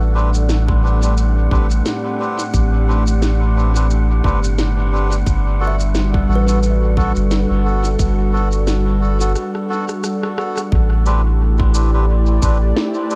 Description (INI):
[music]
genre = ambient dub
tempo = 88 BPM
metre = 4/4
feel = swing 57% on 16ths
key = A dorian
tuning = A4 = 440 Hz
[part]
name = airy breathy pad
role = sustained chords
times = 0.0-13.2 s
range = A2 to D5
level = -25 LUFS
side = equal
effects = chorus
[part]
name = kalimba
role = arpeggios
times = 0.0-9.2 s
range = G3 to E5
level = -31 LUFS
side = equal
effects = dub echo
[part]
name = soft dub sub bass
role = bass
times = 0.0-12.7 s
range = G1 to A1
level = -18 LUFS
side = equal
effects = none
[part]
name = wind-like tuned noise texture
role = texture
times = 0.0-13.2 s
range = G4 to F#5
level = -36 LUFS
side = equal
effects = built-in reverb
[part]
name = melodica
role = stabs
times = 0.1-13.2 s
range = B3 to B4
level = -28 LUFS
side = equal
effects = dub echo
[part]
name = electronic shaker, snare drum and rim click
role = drums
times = 0.3-13.2 s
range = none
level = -29 LUFS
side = equal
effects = dub echo
[part]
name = electronic kick drum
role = drums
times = 0.7-12.6 s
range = none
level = -21 LUFS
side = equal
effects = none
[sound]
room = little or no reverb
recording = echo-heavy mix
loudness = -17 LUFS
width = mono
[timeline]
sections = 0.0-10.7 A section; 10.7-13.2 B section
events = break 9.4-10.7; drum fill 9.4-10.7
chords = 0.0 Am11; 5.3 Gmaj9; 10.7 Am11